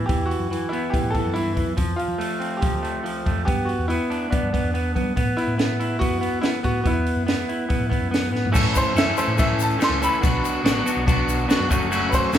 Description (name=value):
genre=indie rock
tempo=142 BPM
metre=4/4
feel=straight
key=A mixolydian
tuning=A4 = 440 Hz
part: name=electric guitar through a small old amp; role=riff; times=0.0-12.4 s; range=E3 to A4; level=-24 LUFS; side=right 1 dB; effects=none
part: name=hollow-body short-scale picked electric bass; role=bass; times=0.0-12.4 s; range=E1 to G3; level=-27 LUFS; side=equal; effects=none
part: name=bright upright piano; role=melody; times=0.1-12.3 s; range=D4 to C6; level=-27 LUFS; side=equal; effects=none
part: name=compact cocktail drum kit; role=drums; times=0.1-12.4 s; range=crash cymbal, hi-hat, kick drum, snare drum, toms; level=-24 LUFS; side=equal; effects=none
part: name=combo organ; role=sustained chords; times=8.5-12.4 s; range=C#3 to F#4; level=-33 LUFS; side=left 2 dB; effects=none
part: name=tube shaker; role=percussion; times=8.5-12.4 s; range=none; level=-37 LUFS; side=left 11 dB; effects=none
room=moderate recital hall reverb, RT60 1.6 s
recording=recorded in a church or concert hall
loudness=-20 LUFS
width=side -10 dB against mid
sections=0.0-8.5 A section; 8.5-12.4 B section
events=drum fill 8.3; upright piano solo 8.5-12.4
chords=0.0 Asus2 (rootless); 1.8 Fadd9; 3.5 G; 5.2 Asus2; 8.5 A; 10.2 Bm; 11.7 F#m